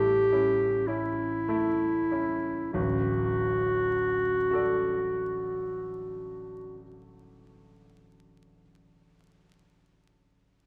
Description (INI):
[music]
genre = classical, romantic duo for clarinet and grand piano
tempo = 34 BPM (dotted quarters)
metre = 12/8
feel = rubato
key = D major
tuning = A4 = 440 Hz
[part]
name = mellow clarinet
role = melody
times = 0.0-6.8 s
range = E4 to G4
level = -29 LUFS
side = equal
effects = none
[part]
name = clear concert grand piano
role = accompaniment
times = 0.0-10.7 s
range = D1 to D5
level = -35 LUFS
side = equal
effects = none
[sound]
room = moderate recital hall reverb, RT60 1.8 s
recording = vinyl crackle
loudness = -28 LUFS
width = mono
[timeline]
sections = 0.0-2.7 A section; 2.7-9.8 B section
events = slowing down 0.0-2.7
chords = 0.0 A7; 2.7 D